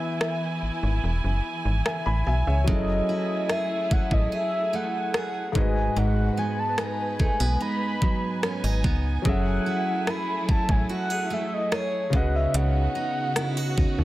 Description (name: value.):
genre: contemporary R&B.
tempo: 73 BPM.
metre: 4/4.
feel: straight.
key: F# dorian.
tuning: A4 = 440 Hz.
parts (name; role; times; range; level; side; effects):
mellow horn-like synth lead; melody; 0.0-14.0 s; C#5 to B5; -29 LUFS; equal; chorus.
clear concert grand piano; accompaniment; 0.0-14.0 s; G#2 to B5; -32 LUFS; left 3 dB; none.
warm studio string section; sustained chords; 0.0-14.0 s; C#3 to G#5; -32 LUFS; right 2 dB; sidechain pumping.
trap drum kit; drums; 0.2-14.0 s; hi-hat, kick drum, rim click; -25 LUFS; equal; overdrive.
slap-like FM bass; bass; 0.6-14.0 s; E1 to D#2; -24 LUFS; equal; none.
picked steel-string acoustic guitar; arpeggios; 2.7-14.0 s; G#2 to G#4; -31 LUFS; right 3 dB; none.
room: small room ambience.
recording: none.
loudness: -22 LUFS.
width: side -16 dB against mid.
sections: 0.0-14.0 A section.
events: break 0.0-2.7.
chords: 0.0 E; 2.7 F#m9; 5.6 G#m7; 9.3 F#m9; 12.1 C#9sus4.